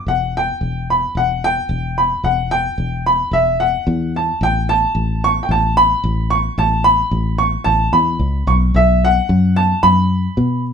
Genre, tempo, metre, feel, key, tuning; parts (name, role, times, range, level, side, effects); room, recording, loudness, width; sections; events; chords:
indie folk with a building arrangement; 111 BPM; 4/4; straight; A4 = 440 Hz
warm upright piano; melody; 0.0-10.6 s; E5 to C#6; -16 LUFS; right 1 dB
fingered electric bass; bass; 0.1-10.7 s; E1 to B2; -18 LUFS; left 1 dB
moderate studio ambience, RT60 0.5 s; band playing live in one room; -14 LUFS; side -7 dB against mid
0.0-8.8 A section; 8.8-10.7 B section
build-up 0.0-8.8
0.1 Emadd9; 4.4 A; 8.8 B5